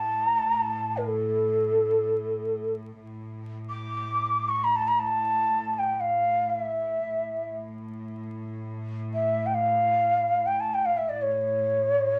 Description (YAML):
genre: Persian modal ensemble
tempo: free time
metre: none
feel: none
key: A dastgah homayun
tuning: A4 = 440 Hz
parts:
  - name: breathy mellow ney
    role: melody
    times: 0.0-12.2 s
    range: A4 to D6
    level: -26 LUFS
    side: equal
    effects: none
  - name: warm studio cello section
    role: drone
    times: 0.0-12.2 s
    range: A2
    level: -38 LUFS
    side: equal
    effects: none
room: wet club reverb, RT60 0.7 s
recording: vinyl crackle, faint mains hum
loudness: -26 LUFS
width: mono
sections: 0.0-3.1 A section; 3.1-12.2 A section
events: none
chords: none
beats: free time